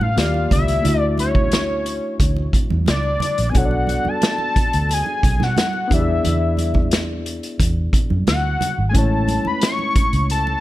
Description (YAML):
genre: lush 1970s-style soul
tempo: 89 BPM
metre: 4/4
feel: straight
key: unclear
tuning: A4 = 439 Hz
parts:
  - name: fat analog lead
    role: melody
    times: 0.0-10.6 s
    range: C#5 to C#6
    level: -22 LUFS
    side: left 2 dB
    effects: none
  - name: barky reed electric piano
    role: accompaniment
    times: 0.0-10.6 s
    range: D#3 to E5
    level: -25 LUFS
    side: left 2 dB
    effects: overdrive
  - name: vintage muted fingered electric bass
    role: bass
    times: 0.0-10.6 s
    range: G#1 to B2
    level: -21 LUFS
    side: equal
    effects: none
  - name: congas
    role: percussion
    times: 0.0-10.6 s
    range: none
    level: -29 LUFS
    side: right 6 dB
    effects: none
  - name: vintage drum kit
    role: drums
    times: 0.2-10.5 s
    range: hi-hat, kick drum, snare drum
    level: -20 LUFS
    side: equal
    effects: none
room: small room ambience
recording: dark, warm production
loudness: -16 LUFS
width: side -15 dB against mid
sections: 0.0-10.6 A section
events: none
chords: 0.2 D#maj9; 0.8 Dmaj9; 3.5 Bm7; 5.9 E7; 8.9 Amaj7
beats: 0.17 | 0.85 1.52 2.20 2.87 | 3.55 4.22 4.90 5.57 | 6.25 6.92 7.60 8.27 | 8.95 9.62 10.30